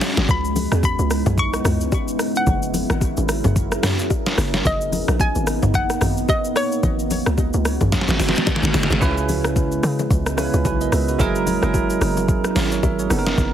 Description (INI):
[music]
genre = amapiano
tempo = 110 BPM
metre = 4/4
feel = swing 58% on 16ths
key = C# dorian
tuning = A4 = 445 Hz
[part]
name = deep dark ambient pad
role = sustained chords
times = 0.0-13.5 s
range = C#3 to D#5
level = -26 LUFS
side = equal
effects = chorus, built-in reverb, sidechain pumping
[part]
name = smooth R&B drum kit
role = drums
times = 0.0-13.5 s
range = hi-hat, kick drum, rim click, shaker, snare drum, toms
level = -21 LUFS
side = equal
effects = none
[part]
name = hollow log drum bass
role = bass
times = 0.2-13.5 s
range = F#1 to C#3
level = -22 LUFS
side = equal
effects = none
[part]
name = hollow square pluck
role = melody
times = 0.3-8.4 s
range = C#5 to C#6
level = -25 LUFS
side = left 1 dB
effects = chorus, ping-pong delay
[part]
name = congas and bongos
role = percussion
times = 0.3-13.5 s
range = none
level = -29 LUFS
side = left 6 dB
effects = none
[part]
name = bell-like tine electric piano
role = accompaniment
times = 9.0-13.5 s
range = C#3 to E5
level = -22 LUFS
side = right 4 dB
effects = analog chorus
[sound]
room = little or no reverb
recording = heavily compressed radio sound, multiband compression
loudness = -17 LUFS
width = side -10 dB against mid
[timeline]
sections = 0.0-9.0 A section; 9.0-13.5 B section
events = drop 0.0-9.0; drum fill 0.0, 7.9-9.0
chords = 0.3 C#m7; 2.5 F#9; 4.4 Bmaj7/F#; 6.8 G#7sus4; 9.0 C#m7; 11.2 F#9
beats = | 0.29 0.83 1.38 1.92 | 2.47 3.01 3.56 4.11 | 4.65 5.20 5.74 6.29 | 6.83 7.38 7.92 8.47 | 9.01 9.56 10.11 10.65 | 11.20 11.74 12.29 12.83 | 13.38